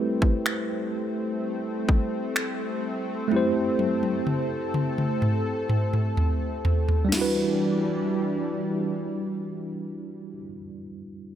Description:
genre	contemporary R&B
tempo	63 BPM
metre	4/4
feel	straight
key	E minor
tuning	A4 = 436 Hz
part	mellow tine electric piano	accompaniment	0.0-11.4 s	G3 to C5	-28 LUFS	right 1 dB	medium stereo tremolo
part	lush unison pad	sustained chords	0.0-10.4 s	E3 to A4	-30 LUFS	left 1 dB	chorus
part	trap drum kit	drums	0.2-7.3 s	crash cymbal, finger snaps, kick drum, snare drum, toms	-25 LUFS	equal	none
room	light reverb, digital ambience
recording	none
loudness	-23 LUFS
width	side -10 dB against mid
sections	0.0-7.1 A section; 7.1-10.9 B section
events	drum fill 3.3-7.1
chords	0.0 Am7; 7.1 Em7

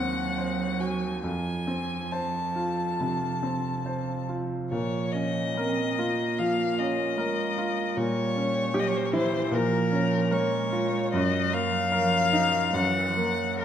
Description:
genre	classical, slow romantic movement for piano trio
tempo	66-78 BPM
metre	4/4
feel	rubato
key	Bb minor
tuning	A4 = 440 Hz
part	rich violin	melody	0.0-13.6 s	Bb4 to A5	-29 LUFS	left 4 dB	none
part	rich cello	second line	0.0-13.6 s	Fb3 to C4	-31 LUFS	right 6 dB	none
part	bright baby grand piano	accompaniment	0.0-13.6 s	Eb2 to C5	-28 LUFS	equal	none
room	wet recital hall reverb, RT60 1.6 s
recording	none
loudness	-24 LUFS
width	side -9 dB against mid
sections	0.0-13.6 A section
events	none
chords	0.0 Cdim/Eb; 1.2 F; 4.7 Bbm; 8.0 Bbdim7; 9.5 Bbm; 11.1 Ebm/Gb; 12.7 Gb7

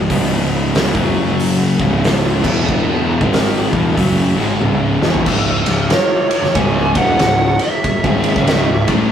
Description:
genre	stoner and doom metal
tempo	93 BPM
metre	4/4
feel	swing 62% on 8ths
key	C# minor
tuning	A4 = 440 Hz
part	thick fuzz guitar	riff	0.0-9.1 s	C#2 to A3	-19 LUFS	left 6 dB	distortion
part	thick fuzz guitar	riff	0.0-9.1 s	C#2 to A3	-22 LUFS	right 5 dB	distortion
part	tight distorted guitar	riff	0.0-9.1 s	C#2 to A3	-25 LUFS	equal	distortion
part	fuzz picked electric bass	bass	0.0-9.1 s	C#1 to A1	-21 LUFS	equal	overdrive, tube saturation
part	bowed-like drone	sustained chords	4.3-9.1 s	C#4 to C#5	-29 LUFS	right 1 dB	none
part	oversized low-tuned drum kit	drums	0.1-9.0 s	crash cymbal, hi-hat, kick drum, ride cymbal, snare drum, toms	-17 LUFS	right 1 dB	none
part	fuzz lead guitar	melody	5.9-8.9 s	C#5 to G#5	-18 LUFS	right 2 dB	distortion
room	light reverb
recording	rough rehearsal-room recording, tube saturation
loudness	-13 LUFS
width	side -9 dB against mid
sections	0.0-5.3 A section; 5.3-9.1 B section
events	drum fill 4.6-5.3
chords	0.0 C#5; 0.9 F#5; 1.7 C#5; 2.4 E5; 3.2 C#m

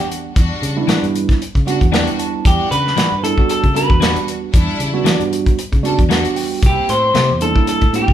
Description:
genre	straight-eighth soul blues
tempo	115 BPM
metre	4/4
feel	swing 55% on 16ths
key	E minor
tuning	A4 = 440 Hz
part	electric guitar through a small old amp	melody	0.0-8.1 s	G4 to C5	-17 LUFS	equal	none
part	mellow tine electric piano	accompaniment	0.0-8.1 s	G3 to A5	-20 LUFS	right 7 dB	none
part	clear symphonic string section	sustained chords	0.0-8.1 s	G3 to A4	-26 LUFS	left 1 dB	none
part	warm soul drum kit	drums	0.1-8.1 s	hi-hat, kick drum, snare drum	-16 LUFS	equal	none
part	fingered electric bass	bass	0.4-8.1 s	C2 to E3	-22 LUFS	equal	none
part	clean electric guitar	stabs	0.9-7.3 s	C3 to G4	-22 LUFS	left 7 dB	none
room	light reverb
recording	band playing live in one room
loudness	-13 LUFS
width	side -11 dB against mid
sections	0.0-8.1 A section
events	tine electric piano fill 1.4-2.4, 5.6-6.6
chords	0.0 Em9; 6.6 C7

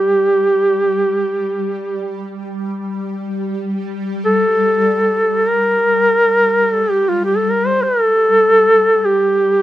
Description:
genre	caucasian folk, Caucasian lament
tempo	free time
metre	none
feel	none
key	G minor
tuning	A4 = 440 Hz
part	warm duduk	melody	0.0-9.6 s	F4 to C5	-12 LUFS	equal	none
part	shimmering ambient pad	drone	0.0-9.6 s	G3	-23 LUFS	left 1 dB	chorus, built-in reverb, phaser
room	studio ambience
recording	rough home demo mix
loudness	-13 LUFS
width	side -14 dB against mid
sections	0.0-9.6 A section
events	none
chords	none

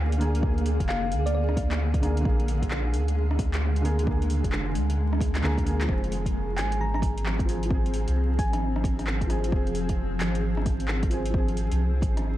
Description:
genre	future garage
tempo	132 BPM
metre	4/4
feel	swing 63% on 16ths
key	F dorian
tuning	A4 = 441 Hz
part	felt-muted upright piano	accompaniment	0.0-12.4 s	D3 to Ab4	-33 LUFS	right 1 dB	sidechain pumping, tape echo
part	granular cloud pad	sustained chords	0.0-12.4 s	D3 to Ab4	-32 LUFS	equal	built-in reverb, sidechain pumping
part	soft dub sub bass	bass	0.0-12.4 s	F1 to D2	-26 LUFS	equal	sidechain pumping
part	flickering grainy texture	texture	0.0-5.9 s	F5	-47 LUFS	equal	none
part	deep house drum kit	drums	0.1-12.2 s	handclaps, hi-hat, rim click	-35 LUFS	equal	overdrive
part	electronic kick drum	drums	0.4-12.1 s	none	-27 LUFS	equal	overdrive
part	thumb-piano-like synth pluck	melody	0.9-1.4, 6.6-8.8 s	D5 to Bb5	-36 LUFS	left 1 dB	chorus, tape echo
room	little or no reverb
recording	vinyl crackle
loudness	-23 LUFS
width	side -14 dB against mid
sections	0.0-5.9 A section; 5.9-12.4 A section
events	drum fill 5.4-5.9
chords	0.0 Bb7; 5.9 Fm

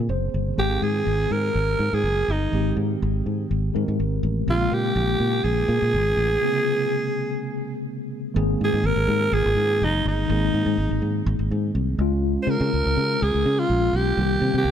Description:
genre	disco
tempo	124 BPM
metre	4/4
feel	straight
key	Ab major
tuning	A4 = 440 Hz
part	mellow tine electric piano	accompaniment	0.0-14.7 s	C3 to C5	-27 LUFS	left 3 dB	medium stereo tremolo
part	fingered electric bass	bass	0.0-14.7 s	Gb1 to Db3	-23 LUFS	equal	none
part	growling alto saxophone	melody	0.6-14.7 s	Eb4 to C5	-23 LUFS	right 2 dB	none
room	light reverb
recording	none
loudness	-20 LUFS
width	side -9 dB against mid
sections	0.0-8.4 A section; 8.4-14.7 B section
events	tine electric piano fill 0.0-0.6; break 6.4-8.4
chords	0.0 Bbm9; 0.6 Abmaj7; 4.5 Bbm9; 8.4 Abadd9; 12.0 Db; 14.2 Cm7

